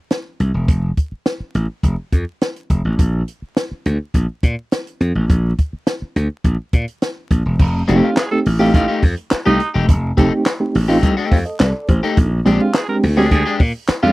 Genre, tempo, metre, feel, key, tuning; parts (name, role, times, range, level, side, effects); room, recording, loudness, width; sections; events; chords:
funk; 104 BPM; 4/4; straight; F mixolydian; A4 = 439 Hz
compact cocktail drum kit; drums; 0.1-14.0 s; crash cymbal, handclaps, hi-hat, kick drum, snare drum; -16 LUFS; equal
slap bass; bass; 0.4-14.1 s; E1 to Bb2; -17 LUFS; equal
electric guitar at the edge of break-up; accompaniment; 7.9-14.1 s; Ab3 to A4; -19 LUFS; left 5 dB; lush chorus
mellow reed electric piano; stabs; 7.9-14.1 s; Ab3 to F5; -18 LUFS; right 2 dB; fast tremolo
raspy tenor saxophone; second line; 8.0-14.1 s; Eb4 to Bb4; -21 LUFS; right 3 dB
little or no reverb; dry, close 1970s-style studio recording, vinyl crackle; -15 LUFS; side -19 dB against mid
0.0-7.6 A section; 7.6-14.1 B section
0.0 F; 3.0 Bb; 7.6 F9; 12.2 Bb13